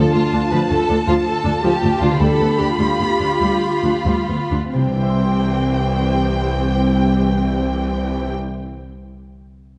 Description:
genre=cinematic, heroic adventure film score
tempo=85-109 BPM (dotted quarters)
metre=12/8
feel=straight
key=C major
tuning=A4 = 441 Hz
part: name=warm symphonic violin section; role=melody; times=0.0-8.3 s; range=G5 to B5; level=-27 LUFS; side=equal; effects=none
part: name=warm symphonic violin section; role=second line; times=0.0-8.3 s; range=C4 to B4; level=-25 LUFS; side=equal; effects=none
part: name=warm symphonic viola section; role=accompaniment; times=0.0-8.3 s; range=E3 to G4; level=-26 LUFS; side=equal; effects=none
part: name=concert harp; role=arpeggios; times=0.0-9.2 s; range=C3 to C6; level=-27 LUFS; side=equal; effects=none
part: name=warm symphonic cello section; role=bass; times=0.0-8.3 s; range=C2 to D2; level=-22 LUFS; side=equal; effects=none
room=wet scoring stage reverb, RT60 2.0 s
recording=nothing above 10.9 kHz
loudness=-18 LUFS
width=mono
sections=0.0-4.7 A section; 4.7-7.5 B section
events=slowing down 0.7-4.7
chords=0.0 Dm; 2.2 G/D; 4.7 C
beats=0.52 1.07 1.63 | 2.20 2.79 3.40 4.05 | 4.75 5.44 6.14 6.85

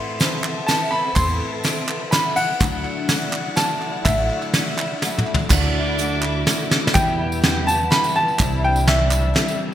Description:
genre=indie folk with a building arrangement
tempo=124 BPM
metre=3/4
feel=straight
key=unclear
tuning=A4 = 437 Hz
part: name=bright upright piano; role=melody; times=0.0-9.6 s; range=E5 to C6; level=-23 LUFS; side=equal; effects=digital delay
part: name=picked twelve-string acoustic guitar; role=accompaniment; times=0.0-9.7 s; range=E2 to E4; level=-27 LUFS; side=left 4 dB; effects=ensemble chorus
part: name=warm chamber string section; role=sustained chords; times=0.0-9.7 s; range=E3 to D6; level=-32 LUFS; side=left 1 dB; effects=none
part: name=soft brush drum kit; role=drums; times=0.2-9.5 s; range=crash cymbal, hi-hat, kick drum, ride cymbal, snare drum, toms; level=-21 LUFS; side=equal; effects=gated reverb
part: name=tambourine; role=percussion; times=0.2-9.6 s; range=none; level=-33 LUFS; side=right 4 dB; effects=none
part: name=group handclap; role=percussion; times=0.4-9.4 s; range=none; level=-29 LUFS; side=right 4 dB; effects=none
part: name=upright bass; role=bass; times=1.2-9.3 s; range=A1 to E2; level=-23 LUFS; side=equal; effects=none
part: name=dark fiddle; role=second line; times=5.5-6.9 s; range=D4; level=-27 LUFS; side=right 4 dB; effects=none
part: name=felt-muted upright piano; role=accompaniment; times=5.5-9.7 s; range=C2 to E5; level=-31 LUFS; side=right 5 dB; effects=none
room=moderate plate reverb, RT60 1.6 s, small room reverb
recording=bright 1980s-style digital production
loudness=-17 LUFS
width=side -11 dB against mid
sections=0.0-5.5 A section; 5.5-7.0 B section; 7.0-9.7 C section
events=drum fill 5.0-5.5, 6.7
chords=0.0 Amadd9; 2.6 Dadd9; 7.0 Em; 8.4 Cadd9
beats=0.20 0.68 | 1.17 1.65 2.13 | 2.61 3.09 3.58 | 4.06 4.54 5.02 | 5.51 5.99 6.47 | 6.95 7.43 7.91 | 8.39 8.88 9.36

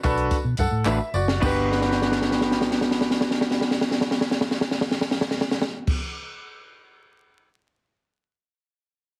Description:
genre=uptempo 1960s-style soul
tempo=104 BPM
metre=4/4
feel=straight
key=G major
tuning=A4 = 440 Hz
part: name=bright upright piano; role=accompaniment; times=0.0-6.0 s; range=D4 to F#5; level=-31 LUFS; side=equal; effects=none
part: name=vintage muted fingered electric bass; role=bass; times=0.0-6.0 s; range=F#1 to B2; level=-30 LUFS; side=equal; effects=none
part: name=compact cocktail drum kit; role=drums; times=0.0-7.5 s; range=crash cymbal, hi-hat, kick drum, snare drum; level=-27 LUFS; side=equal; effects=none
part: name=tambourine and handclaps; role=percussion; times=0.0-6.0 s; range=none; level=-40 LUFS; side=equal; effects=none
part: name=electric guitar through a small old amp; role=stabs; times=0.9-6.0 s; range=A3 to B4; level=-28 LUFS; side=equal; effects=none
room=light reverb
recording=heavily compressed radio sound, vinyl crackle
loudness=-23 LUFS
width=mono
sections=0.0-1.4 A section; 1.4-6.0 B section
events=slowing down 0.0-1.4; drum fill 0.9-1.4, 1.7-5.9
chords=0.0 Bm7; 1.4 Gmaj7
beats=0.31 0.86 | 1.42 2.00 2.57 3.15 | 3.72 4.30 4.87 5.45

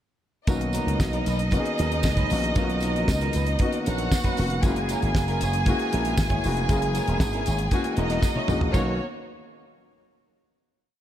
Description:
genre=disco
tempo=116 BPM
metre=4/4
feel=straight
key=B major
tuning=A4 = 439 Hz
part: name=warm studio violin section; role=second line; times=0.5-9.0 s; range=A#3 to G#5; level=-29 LUFS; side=equal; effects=none
part: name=electric guitar at the edge of break-up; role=accompaniment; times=0.5-8.9 s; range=F#3 to C#5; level=-34 LUFS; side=right 2 dB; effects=wide subtle chorus
part: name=warm concert grand piano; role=accompaniment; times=0.5-9.0 s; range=D#3 to G#4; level=-29 LUFS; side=left 2 dB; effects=none
part: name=slap bass with an envelope filter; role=bass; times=0.5-9.0 s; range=E1 to D#2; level=-26 LUFS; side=equal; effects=none
part: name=damped 70s drum kit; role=drums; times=0.5-8.9 s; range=hi-hat, kick drum, snare drum, toms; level=-26 LUFS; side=equal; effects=none
part: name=tambourine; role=percussion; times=0.5-9.0 s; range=none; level=-41 LUFS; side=right 6 dB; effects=none
room=light reverb, studio reverb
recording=none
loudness=-22 LUFS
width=side -11 dB against mid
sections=0.5-8.7 verse; 8.7-10.8 final chord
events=drum fill 8.2-8.7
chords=0.5 Bmaj9; 4.6 F#9; 8.7 Bmaj9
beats=| 0.47 0.99 1.51 2.03 | 2.56 3.08 3.59 4.11 | 4.63 5.15 5.66 6.18 | 6.69 7.21 7.72 8.23 | 8.75

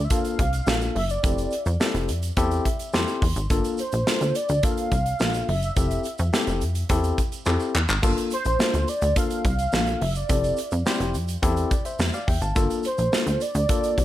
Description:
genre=early-eighties boogie funk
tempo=106 BPM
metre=4/4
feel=straight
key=G dorian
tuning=A4 = 440 Hz
part: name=warm velvety synth lead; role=melody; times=0.0-14.0 s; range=C5 to F5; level=-28 LUFS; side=right 1 dB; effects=chorus, analog delay
part: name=plucky analog bass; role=bass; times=0.0-14.0 s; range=F1 to F2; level=-25 LUFS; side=equal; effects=none
part: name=tine electric piano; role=accompaniment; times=0.1-14.0 s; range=Bb3 to C6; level=-28 LUFS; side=left 4 dB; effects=none
part: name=modern studio drum kit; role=drums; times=0.1-14.0 s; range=handclaps, hi-hat, kick drum, snare drum, splash cymbal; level=-25 LUFS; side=equal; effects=gated reverb
part: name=tube shaker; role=percussion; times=0.1-14.0 s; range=none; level=-40 LUFS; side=right 6 dB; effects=none
room=small room ambience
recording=none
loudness=-21 LUFS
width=side -14 dB against mid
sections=0.0-14.0 A section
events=tine electric piano fill 2.4-3.5; drum fill 7.5-8.0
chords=0.0 Gm9 (rootless); 1.2 Fmaj7; 3.5 Gm9 (rootless); 5.8 Fmaj7; 8.0 Gm9 (rootless); 10.3 Fmaj7; 12.6 Gm9 (rootless)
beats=0.11 0.67 | 1.24 1.80 2.37 2.94 | 3.50 4.07 4.63 5.20 | 5.77 6.33 6.90 7.47 | 8.03 8.60 9.16 9.73 | 10.30 10.86 11.43 11.99 | 12.56 13.13 13.69

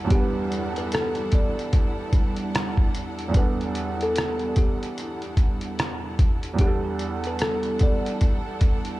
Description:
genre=lo-fi hip hop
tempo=74 BPM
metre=4/4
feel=swing 61% on 16ths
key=E minor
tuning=A4 = 440 Hz
part: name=kalimba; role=melody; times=0.0-8.4 s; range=G4 to D5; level=-30 LUFS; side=left 2 dB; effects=none
part: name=felt-muted upright piano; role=accompaniment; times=0.0-9.0 s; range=E2 to F#5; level=-29 LUFS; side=right 3 dB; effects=cassette tape
part: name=clear studio string section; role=sustained chords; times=0.0-9.0 s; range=G3 to F#5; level=-34 LUFS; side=equal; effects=none
part: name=trip hop sampler-style drum kit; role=drums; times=0.1-9.0 s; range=hi-hat, kick drum, rim click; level=-22 LUFS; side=equal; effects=none
room=light reverb, small room ambience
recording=dark, warm production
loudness=-22 LUFS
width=side -17 dB against mid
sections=0.0-6.6 A section; 6.6-9.0 B section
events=none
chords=0.0 Em11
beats=| 0.10 0.91 1.72 2.54 | 3.35 4.16 4.97 5.78 | 6.59 7.40 8.21

